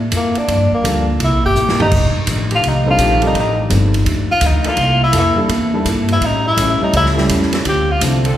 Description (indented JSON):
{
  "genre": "jazz, big band swing",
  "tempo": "167 BPM",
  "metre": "4/4",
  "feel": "swing 65% on 8ths",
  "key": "C mixolydian",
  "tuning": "A4 = 440 Hz",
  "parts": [
    { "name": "upright bass", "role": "bass", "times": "0.0-8.4 s", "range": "F1 to A2", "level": "-17 LUFS", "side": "equal", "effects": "none" },
    { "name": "vintage hollow-body jazz guitar", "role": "accompaniment", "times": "0.1-8.3 s", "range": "F2 to A4", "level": "-22 LUFS", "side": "left 1 dB", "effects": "none" },
    { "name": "swinging big-band drum kit", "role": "drums", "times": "0.1-8.3 s", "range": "crash cymbal, hi-hat, kick drum, ride cymbal, snare drum, toms", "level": "-21 LUFS", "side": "right 1 dB", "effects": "none" },
    { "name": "warm tenor saxophone", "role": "melody", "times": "0.2-8.0 s", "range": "Bb3 to G4", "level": "-17 LUFS", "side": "equal", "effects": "none" },
    { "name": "dark baby grand piano", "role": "accompaniment", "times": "0.8-8.2 s", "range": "F3 to A4", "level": "-21 LUFS", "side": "equal", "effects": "none" },
    { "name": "brilliant trombone section", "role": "sustained chords", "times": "1.8-8.4 s", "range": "Eb3 to A4", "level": "-27 LUFS", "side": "right 1 dB", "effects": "none" }
  ],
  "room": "wet scoring stage reverb, RT60 1.6 s",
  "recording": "heard from further back in the room",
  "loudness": "-12 LUFS",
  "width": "side -12 dB against mid",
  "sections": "0.0-8.4 A section",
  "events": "tenor saxophone solo 0.0-8.4; drum fill 1.6-1.9",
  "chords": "0.5 Gm7; 1.2 C13; 1.9 F13; 4.8 C13; 6.2 A7; 7.7 Dm7"
}